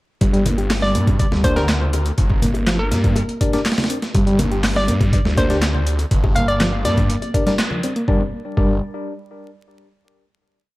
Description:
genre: breakbeat, breaks.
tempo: 122 BPM.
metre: 4/4.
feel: straight.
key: G minor.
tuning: A4 = 440 Hz.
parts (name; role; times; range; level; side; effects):
reed electric piano; riff; 0.2-8.8 s; F3 to G4; -23 LUFS; equal; fast tremolo, vintage 12-bit sampler grit, tape echo.
phased detuned saw bass; bass; 0.2-8.8 s; G1 to G2; -20 LUFS; equal; phaser.
breakbeat sampler-style drum kit; drums; 0.2-8.7 s; hi-hat, kick drum, snare drum; -20 LUFS; equal; overdrive.
punchy analog drum machine; drums; 0.2-8.1 s; handclaps, hi-hat; -29 LUFS; equal; overdrive.
congas and bongos; percussion; 0.5-7.9 s; none; -28 LUFS; left 1 dB; tape echo.
hollow square pluck; melody; 0.8-7.5 s; Bb4 to F5; -24 LUFS; equal; chorus, old record sound, cassette tape, tape echo.
tine electric piano; stabs; 1.4-8.8 s; D4 to D5; -25 LUFS; left 3 dB; medium tremolo, tape echo.
room: light reverb, digital ambience.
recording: echo-heavy mix, vinyl crackle.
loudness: -16 LUFS.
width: side -19 dB against mid.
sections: 0.2-8.1 drop; 8.1-10.0 final chord.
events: drop 0.2-8.1; band accent 7.6.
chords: 0.2 Gm.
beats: | 0.21 0.70 1.20 1.69 | 2.18 2.67 3.16 3.65 | 4.15 4.64 5.13 5.62 | 6.11 6.61 7.10 7.59 | 8.08 8.57.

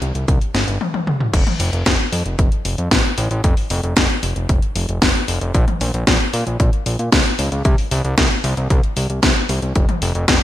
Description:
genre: italo disco.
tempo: 114 BPM.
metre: 4/4.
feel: straight.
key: F major.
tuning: A4 = 442 Hz.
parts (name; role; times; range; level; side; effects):
fat analog bass; bass; 0.0-10.4 s; F1 to Bb2; -20 LUFS; equal; ping-pong delay.
house drum kit; drums; 0.0-10.4 s; crash cymbal, hi-hat, snare drum, toms; -19 LUFS; left 1 dB; gated reverb.
electronic kick drum; drums; 0.3-10.4 s; none; -17 LUFS; equal; none.
room: light reverb.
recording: bright 1980s-style digital production, lossy compression artefacts.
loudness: -15 LUFS.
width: side -13 dB against mid.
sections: 0.0-1.3 A section; 1.3-10.4 B section.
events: drum fill 0.8-1.3; stop 0.8-1.3.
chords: none.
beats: 0.28 0.81 | 1.33 1.86 2.39 2.91 | 3.44 3.97 4.49 5.02 | 5.54 6.07 6.60 7.12 | 7.65 8.18 8.70 9.23 | 9.76 10.28.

